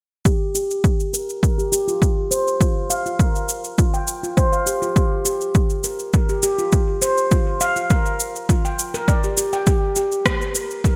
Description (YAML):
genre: organic downtempo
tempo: 102 BPM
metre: 4/4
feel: straight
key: G minor pentatonic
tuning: A4 = 442 Hz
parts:
  - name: handpan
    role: arpeggios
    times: 0.3-11.0 s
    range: F4 to G5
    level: -24 LUFS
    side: equal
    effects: low-pass filter, delay
  - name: electronic kick drum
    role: drums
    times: 0.3-11.0 s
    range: none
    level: -20 LUFS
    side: equal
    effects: overdrive
  - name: electronic shaker and rim click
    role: drums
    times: 0.3-11.0 s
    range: none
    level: -26 LUFS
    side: equal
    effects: overdrive, gated reverb
room: moderate plate reverb, RT60 2.5 s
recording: bright 1980s-style digital production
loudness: -20 LUFS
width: mono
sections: 0.3-11.0 A section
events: filter sweep on handpan 0.3-11.0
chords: none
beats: | 0.26 0.85 1.44 2.02 | 2.61 3.20 3.79 4.38 | 4.96 5.55 6.14 6.73 | 7.32 7.91 8.49 9.08 | 9.67 10.26 10.85